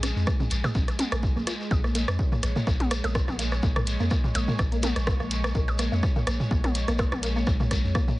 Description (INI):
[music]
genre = minimal techno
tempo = 125 BPM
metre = 4/4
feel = swing 55% on 16ths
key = Bb minor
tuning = A4 = 441 Hz
[part]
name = resonant blip pluck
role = riff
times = 0.0-8.1 s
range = Bb3 to F4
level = -33 LUFS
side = equal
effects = phaser, sidechain pumping, tape echo
[part]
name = punchy sub bass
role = bass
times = 0.0-7.9 s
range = Bb1 to F2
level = -28 LUFS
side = equal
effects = sidechain pumping
[part]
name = punchy analog drum machine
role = drums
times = 0.0-7.8 s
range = hi-hat, rim click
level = -33 LUFS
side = equal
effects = none
[part]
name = minimal click drum kit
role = percussion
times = 0.0-8.2 s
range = percussion blips, rim click, toms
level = -30 LUFS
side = equal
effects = dub echo
[part]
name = shekere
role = percussion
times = 0.0-8.2 s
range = none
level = -36 LUFS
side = left 2 dB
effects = none
[part]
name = bubbling stepped-filter texture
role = texture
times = 0.0-8.2 s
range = Ab3 to Db5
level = -36 LUFS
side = right 1 dB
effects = chorus, built-in reverb, sidechain pumping
[part]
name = electronic kick drum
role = drums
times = 0.3-8.1 s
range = none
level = -26 LUFS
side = equal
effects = none
[sound]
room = light reverb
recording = heavily compressed radio sound, nothing above 10.5 kHz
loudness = -23 LUFS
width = side -19 dB against mid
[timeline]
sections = 0.0-8.2 A section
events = none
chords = 0.0 Bbm